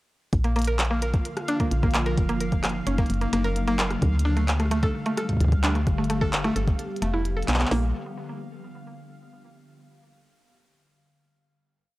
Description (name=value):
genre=IDM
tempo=130 BPM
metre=4/4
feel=straight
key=unclear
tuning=A4 = 439 Hz
part: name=glassy FM pad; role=sustained chords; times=0.7-7.9 s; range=Db3 to G4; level=-32 LUFS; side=left 1 dB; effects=ensemble chorus, built-in reverb, phaser, vintage 12-bit sampler grit
part: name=woody FM bass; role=bass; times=0.3-7.9 s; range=F1 to D2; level=-25 LUFS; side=equal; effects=none
part: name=glitchy drum kit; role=drums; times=0.3-7.8 s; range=hi-hat, kick drum, snare drum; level=-24 LUFS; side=equal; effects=overdrive, studio reverb
part: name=glitchy drum kit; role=drums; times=0.3-7.7 s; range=handclaps, hi-hat, rim click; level=-29 LUFS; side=equal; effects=overdrive, studio reverb
part: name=bubbling stepped-filter texture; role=texture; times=0.5-7.7 s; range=F5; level=-41 LUFS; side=equal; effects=chorus, built-in reverb
part: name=mallet-like synth pluck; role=arpeggios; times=0.4-7.9 s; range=A3 to Bb4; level=-28 LUFS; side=right 1 dB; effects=chorus, analog delay
room=little or no reverb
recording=dry, gritty hardware recording, transformer saturation, cassette tape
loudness=-22 LUFS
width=side -18 dB against mid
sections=0.3-7.7 groove; 7.7-9.6 final chord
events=none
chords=0.3 Bb; 2.2 Gb6; 4.0 Dsus4; 5.9 G; 7.7 Bb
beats=| 0.33 0.79 1.25 1.71 | 2.18 2.64 3.10 3.56 | 4.02 4.48 4.95 5.41 | 5.87 6.33 6.79 7.25 | 7.71